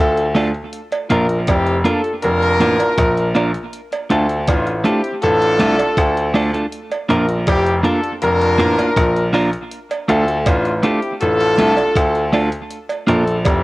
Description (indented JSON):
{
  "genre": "roots reggae",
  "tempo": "80 BPM",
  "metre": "4/4",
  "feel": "straight",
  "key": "D minor",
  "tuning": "A4 = 440 Hz",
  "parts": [
    { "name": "warm horn section", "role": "second line", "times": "0.0-13.6 s", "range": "A3 to Bb4", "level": "-18 LUFS", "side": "left 1 dB", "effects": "cassette tape, tape echo" },
    { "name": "bright baby grand piano", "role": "bass", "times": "0.0-13.6 s", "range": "F1 to D2", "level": "-19 LUFS", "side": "equal", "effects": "none" },
    { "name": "breakbeat sampler-style drum kit", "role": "drums", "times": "0.2-13.6 s", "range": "hi-hat, kick drum, rim click", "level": "-20 LUFS", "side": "equal", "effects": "cassette tape" },
    { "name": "clean electric guitar", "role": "accompaniment", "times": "0.3-13.2 s", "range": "A3 to Bb4", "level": "-19 LUFS", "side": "right 1 dB", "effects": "cassette tape, tape echo" },
    { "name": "cowbell", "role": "percussion", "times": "0.4-13.6 s", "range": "none", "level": "-23 LUFS", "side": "right 4 dB", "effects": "none" }
  ],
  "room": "light reverb",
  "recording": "home recording on cassette",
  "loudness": "-14 LUFS",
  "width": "side -20 dB against mid",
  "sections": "0.0-13.6 A section",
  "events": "none",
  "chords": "0.0 Dm; 0.7 Bb; 3.7 Dm; 6.7 Bb; 9.7 Dm; 12.7 Bb",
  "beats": "| 0.73 1.48 2.23 2.98 | 3.73 4.47 5.22 5.97 | 6.72 7.47 8.22 8.96 | 9.71 10.46 11.21 11.96 | 12.70 13.45"
}